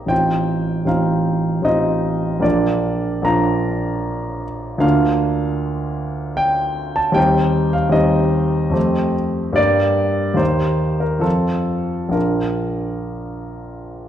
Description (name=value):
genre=classical, romantic character piece for solo piano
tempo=64-78 BPM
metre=3/4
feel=rubato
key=Bb major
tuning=A4 = 440 Hz
part: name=clear grand piano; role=solo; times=0.0-14.1 s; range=A1 to Bb5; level=-16 LUFS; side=equal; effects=none
room=wet recital hall reverb, RT60 1.4 s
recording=dark, warm production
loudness=-16 LUFS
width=side -10 dB against mid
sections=0.0-14.1 A section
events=none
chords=0.1 F7/A; 2.4 Bb; 4.8 Bb/D; 7.2 Cm/Eb; 8.8 F9; 9.6 Gm; 10.4 Eb; 11.2 F; 12.1 Bb